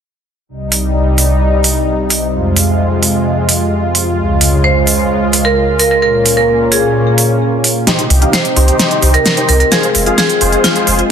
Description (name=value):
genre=EDM, festival progressive house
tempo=130 BPM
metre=4/4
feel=straight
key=unclear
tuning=A4 = 440 Hz
part: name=lush unison pad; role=sustained chords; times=0.5-11.1 s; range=C2 to G4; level=-13 LUFS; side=equal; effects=chorus
part: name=big-room dance drum kit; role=drums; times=0.7-11.1 s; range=hi-hat, snare drum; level=-13 LUFS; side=right 1 dB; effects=none
part: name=marimba with hard mallets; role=melody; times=4.6-11.1 s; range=F4 to C5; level=-14 LUFS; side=right 1 dB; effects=ping-pong delay
part: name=dense compressed supersaw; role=riff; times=7.9-11.0 s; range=Eb4 to F5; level=-16 LUFS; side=equal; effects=cassette tape, low-pass filter, ping-pong delay
part: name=saturated sub bass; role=bass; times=8.1-11.0 s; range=F1 to C2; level=-12 LUFS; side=equal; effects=none
room=light reverb, digital ambience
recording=dense, heavily limited modern master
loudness=-10 LUFS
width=side -8 dB against mid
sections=0.5-7.9 A section; 7.9-11.1 B section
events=build-up 7.9-11.1; drum fill 7.9-11.1; filter sweep on supersaw synth 7.9-11.1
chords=0.5 Cm; 2.3 Fm; 4.2 Db; 6.0 Bbm; 7.9 Cm; 9.7 Fm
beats=| 0.49 0.95 1.41 1.87 | 2.33 2.79 3.26 3.72 | 4.18 4.64 5.10 5.56 | 6.03 6.49 6.95 7.41 | 7.87 8.33 8.79 9.26 | 9.72 10.18 10.64 11.10